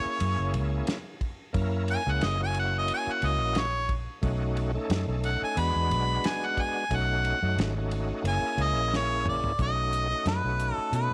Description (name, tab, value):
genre	straight-eighth soul blues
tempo	90 BPM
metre	4/4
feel	swing 55% on 16ths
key	unclear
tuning	A4 = 442 Hz
part	bright harmonica	melody	0.0-11.1 s	B4 to B5	-31 LUFS	equal	overdrive
part	bright tonewheel organ	accompaniment	0.0-11.1 s	G#3 to A#4	-36 LUFS	equal	slow rotary speaker, overdrive, chorus vibrato
part	vintage muted fingered electric bass	bass	0.1-11.1 s	F#1 to B2	-31 LUFS	equal	none
part	cloth-damped thuddy drum kit	drums	0.2-11.1 s	hi-hat, kick drum, ride cymbal, snare drum, toms	-37 LUFS	equal	none
room	light reverb, studio ambience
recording	none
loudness	-28 LUFS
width	mono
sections	0.0-9.6 A section; 9.6-11.1 B section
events	harmonica solo 0.0-9.6; drum fill 8.9-9.6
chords	0.0 F#9; 4.2 B9; 5.6 E9; 6.9 B9; 8.2 F#9; 9.6 B9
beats	0.21 0.88 | 1.55 2.22 2.89 3.56 | 4.23 4.90 5.57 6.24 | 6.91 7.58 8.25 8.92 | 9.59 10.26 10.93